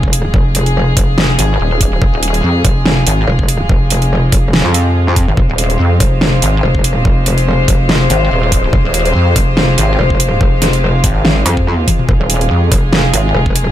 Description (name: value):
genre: heavy wobble dubstep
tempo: 143 BPM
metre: 4/4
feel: swing 55% on 16ths, half-time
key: F minor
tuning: A4 = 440 Hz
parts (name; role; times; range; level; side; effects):
- rich studio string section; sustained chords; 0.0-13.7 s; C3 to C5; -18 LUFS; left 1 dB; sidechain pumping
- metallic wobble bass; bass; 0.0-13.7 s; F1 to F2; -13 LUFS; equal; distortion, chorus, overdrive
- electronic kick drum; drums; 0.0-13.5 s; none; -14 LUFS; equal; none
- dubstep drum kit; drums; 0.1-13.6 s; hi-hat, snare drum, toms; -16 LUFS; equal; overdrive
- pulsing pluck wobble bass; bass; 1.4-13.3 s; Eb1 to F2; -13 LUFS; equal; chorus, overdrive
room: digital ambience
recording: none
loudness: -10 LUFS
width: side -12 dB against mid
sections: 0.0-13.7 A section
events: drum fill 11.9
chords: 0.0 Fm